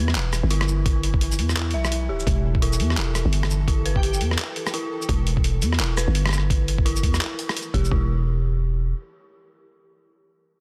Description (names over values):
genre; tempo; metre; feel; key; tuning
half-time drum and bass; 170 BPM; 4/4; swing 60% on 16ths, half-time; E minor; A4 = 440 Hz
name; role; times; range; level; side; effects
dark detuned synth bell; arpeggios; 0.0-8.1 s; E4 to E5; -35 LUFS; equal; chorus, tape echo
growling 808-style bass; bass; 0.0-8.9 s; D1 to E2; -24 LUFS; equal; tube saturation
pulsing gated texture; texture; 0.0-7.9 s; E3 to A4; -40 LUFS; equal; chorus, built-in reverb
boom bap sampler-style drum kit; drums; 0.1-7.9 s; handclaps, hi-hat, rim click, shaker; -30 LUFS; equal; studio reverb, soft clipping on snare
electronic kick drum; drums; 0.9-8.0 s; none; -25 LUFS; equal; studio reverb
airy dreamy lead; melody; 4.0-4.2 s; G4; -36 LUFS; equal; chorus, cassette tape, delay
room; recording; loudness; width
little or no reverb; dense, heavily limited modern master; -23 LUFS; mono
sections
0.0-7.9 A section; 7.9-10.6 B section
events
drop 0.0-7.9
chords
0.0 E5; 7.9 N.C.